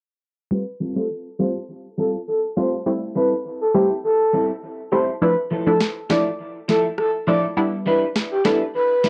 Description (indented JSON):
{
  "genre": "dancehall",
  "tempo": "102 BPM",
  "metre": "4/4",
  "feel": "straight",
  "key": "unclear",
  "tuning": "A4 = 439 Hz",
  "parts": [
    { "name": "breathy flute-like synth lead", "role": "melody", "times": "0.5-9.1 s", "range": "G4 to D5", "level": "-23 LUFS", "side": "equal", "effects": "chorus, low-pass filter, cassette tape, tape echo" },
    { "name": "punchy chord stab", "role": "accompaniment", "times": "0.5-8.6 s", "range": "F3 to F4", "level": "-24 LUFS", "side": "equal", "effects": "chorus, phaser, low-pass filter, cassette tape" },
    { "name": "electric guitar at the edge of break-up", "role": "arpeggios", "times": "0.8-9.1 s", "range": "F3 to B4", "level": "-29 LUFS", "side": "equal", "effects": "subtle chorus, low-pass filter, cassette tape, tape echo" },
    { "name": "electronic snare drum and rim click", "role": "drums", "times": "5.8-9.1 s", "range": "none", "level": "-26 LUFS", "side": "equal", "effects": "overdrive, cassette tape" }
  ],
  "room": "light reverb",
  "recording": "home recording on cassette",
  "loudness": "-21 LUFS",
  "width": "mono",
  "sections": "0.5-9.1 A section",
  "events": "filter sweep 0.5-9.1",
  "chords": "0.5 Fadd9; 2.9 C6; 5.2 Dmadd9; 7.6 Em7"
}